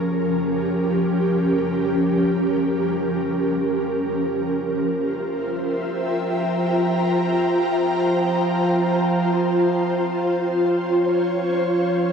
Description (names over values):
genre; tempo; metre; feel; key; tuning
ambient; free time; none; none; unclear; A4 = 440 Hz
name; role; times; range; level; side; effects
ethereal airy pad; sustained chords; 0.0-12.1 s; F3 to Bb5; -20 LUFS; equal; ensemble chorus, built-in reverb, tremolo
analog drone; drone; 5.6-12.1 s; F3; -23 LUFS; right 1 dB; chorus
room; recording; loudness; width
wet cathedral reverb, RT60 5.3 s; in a vast, echoing space, cassette tape; -19 LUFS; side -6 dB against mid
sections
0.0-12.1 A section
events
none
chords
0.0 Bbm/F; 4.5 C7/F; 9.4 Dbmaj7/F